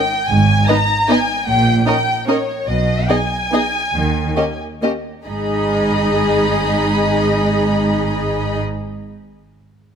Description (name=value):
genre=classical, orchestral ballroom waltz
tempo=129-162 BPM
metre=3/4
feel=rubato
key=G# minor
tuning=A4 = 435 Hz
part: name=warm studio violin section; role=melody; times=0.0-8.6 s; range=C#5 to B5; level=-20 LUFS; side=left 2 dB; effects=none
part: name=warm studio cello section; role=bass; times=0.3-8.6 s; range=G#2 to D#3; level=-21 LUFS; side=right 2 dB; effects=none
part: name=warm studio double bass section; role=bass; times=0.3-8.6 s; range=G#1 to D#2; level=-23 LUFS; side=right 3 dB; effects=none
part: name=dark studio violin section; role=second line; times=0.7-8.6 s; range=G4 to D#5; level=-21 LUFS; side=left 3 dB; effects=none
part: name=rich studio viola section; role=accompaniment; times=0.7-8.6 s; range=G#3 to D#4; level=-20 LUFS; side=right 2 dB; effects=none
room=light reverb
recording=close, detailed microphones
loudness=-14 LUFS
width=side -7 dB against mid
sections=0.0-5.3 A section; 5.3-7.8 B section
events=slowing down 2.1-5.3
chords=0.3 G#m; 1.5 D#7/A#; 2.7 G#m/B; 3.9 N.C.; 5.3 G#m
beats=| 0.29 0.68 1.09 | 1.47 1.86 2.28 | 2.67 3.09 3.52 | 3.93 4.37 4.83 | 5.28 5.70 6.14 | 6.55 6.97 7.41